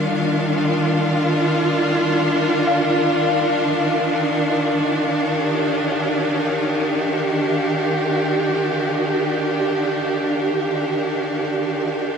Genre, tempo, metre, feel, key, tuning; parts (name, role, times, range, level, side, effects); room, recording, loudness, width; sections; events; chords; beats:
ambient; free time; Eb major; A4 = 439 Hz
clear studio string section; sustained chords; 0.0-12.2 s; Eb3 to F5; -18 LUFS; equal
muted felt-like synth keys; arpeggios; 0.0-4.0 s; Eb3 to F5; -26 LUFS; left 2 dB; chorus, diffuse ambient delay
wet cathedral reverb, RT60 7.1 s; in a vast, echoing space; -17 LUFS; side -6 dB against mid
0.0-3.9 A section; 3.9-12.2 B section
0.0 Ebmaj9
free time